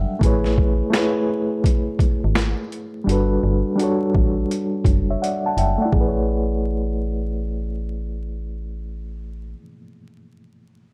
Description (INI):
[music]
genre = lo-fi hip hop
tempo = 84 BPM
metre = 4/4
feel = swing 65% on 16ths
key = A major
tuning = A4 = 441 Hz
[part]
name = reed electric piano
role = accompaniment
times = 0.0-10.9 s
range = F#3 to A5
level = -25 LUFS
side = equal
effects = overdrive, fast tremolo, low-pass filter
[part]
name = metallic FM bass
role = bass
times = 0.0-9.5 s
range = F#1 to A1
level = -26 LUFS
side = equal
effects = none
[part]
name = boom bap sampler-style drum kit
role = drums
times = 0.2-6.1 s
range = finger snaps, hi-hat, kick drum, snare drum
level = -22 LUFS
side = equal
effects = overdrive
[sound]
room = light reverb, digital ambience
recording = vinyl crackle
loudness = -21 LUFS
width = mono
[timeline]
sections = 0.0-5.9 A section; 5.9-8.8 B section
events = reed electric piano fill 0.0; filter sweep on reed electric piano 0.0-5.9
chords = 0.2 Amaj7; 3.1 Gmaj9; 5.9 Amaj7